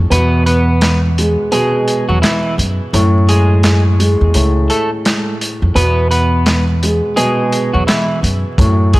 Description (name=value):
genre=hip hop, boom-bap hip-hop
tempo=85 BPM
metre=4/4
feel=swing 62% on 16ths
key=unclear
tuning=A4 = 440 Hz
part: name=dark baby grand piano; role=accompaniment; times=0.0-9.0 s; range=A2 to G#3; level=-17 LUFS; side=equal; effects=cassette tape, high-pass filter, low-pass filter
part: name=upright bass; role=bass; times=0.0-9.0 s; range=C#2 to F#2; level=-13 LUFS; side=equal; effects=none
part: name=electric guitar at the edge of break-up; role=melody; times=0.1-9.0 s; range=E3 to B4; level=-18 LUFS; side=equal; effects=high-pass filter, low-pass filter, digital delay
part: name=crunchy breakbeat drum kit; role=drums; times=0.1-9.0 s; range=handclaps, hi-hat, kick drum, snare drum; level=-17 LUFS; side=equal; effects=none
room=small room ambience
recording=vinyl crackle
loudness=-11 LUFS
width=side -19 dB against mid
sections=0.0-9.0 A section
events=break 0.0-8.6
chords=0.1 E; 2.9 F#madd9; 5.8 E